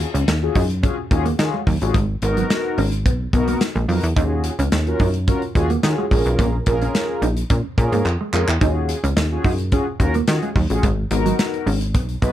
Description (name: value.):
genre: early-eighties boogie funk.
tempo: 108 BPM.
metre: 4/4.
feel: straight.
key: Eb minor.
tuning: A4 = 440 Hz.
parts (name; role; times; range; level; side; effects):
mellow synth brass; accompaniment; 0.0-12.3 s; Cb4 to Cb5; -23 LUFS; left 2 dB; chorus, phaser.
mellow electric guitar; riff; 0.0-12.3 s; Gb3 to Eb4; -26 LUFS; right 4 dB; analog chorus.
plucky analog bass; bass; 0.0-12.3 s; Ab1 to Eb3; -20 LUFS; equal; none.
modern studio drum kit; drums; 0.0-12.3 s; handclaps, hi-hat, kick drum, snare drum; -22 LUFS; equal; none.
room: little or no reverb.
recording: none.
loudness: -17 LUFS.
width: side -12 dB against mid.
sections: 0.0-12.3 A section.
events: drum fill 8.1-8.6.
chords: 0.0 Ebm11; 1.9 Abm7; 4.2 Ebm11; 6.1 Bbm7; 8.6 Ebm11; 10.8 Abm7.